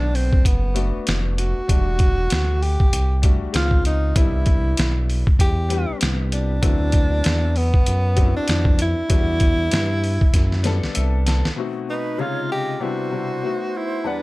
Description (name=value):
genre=hip hop, jazz-hop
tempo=97 BPM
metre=4/4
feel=swing 58% on 16ths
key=E minor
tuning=A4 = 441 Hz
part: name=breathy tenor saxophone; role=melody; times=0.0-14.2 s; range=B3 to G4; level=-25 LUFS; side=right 1 dB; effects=analog delay
part: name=clear upright piano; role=accompaniment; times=0.0-14.2 s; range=E2 to A5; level=-28 LUFS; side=left 6 dB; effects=none
part: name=smooth gliding synth bass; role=bass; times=0.0-11.5 s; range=E1 to G2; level=-21 LUFS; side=equal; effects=none
part: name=trip hop sampler-style drum kit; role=drums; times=0.1-11.6 s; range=hi-hat, kick drum, snare drum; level=-19 LUFS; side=equal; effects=none
part: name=breathy silver concert flute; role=second line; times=11.9-14.2 s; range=B4 to D#5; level=-31 LUFS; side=right 6 dB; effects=none
room=little or no reverb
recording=none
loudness=-17 LUFS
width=side -21 dB against mid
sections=0.0-11.6 A section; 11.6-14.2 B section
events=drum fill 10.3-11.6; upright piano fill 10.7-11.6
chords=0.0 Gmaj7 (rootless); 1.7 Em11; 3.5 C#maj7; 4.2 Cmaj7; 6.6 D13; 9.1 Em7; 11.6 B7b9; 12.2 C#maj7; 12.8 Cmaj7; 13.4 B7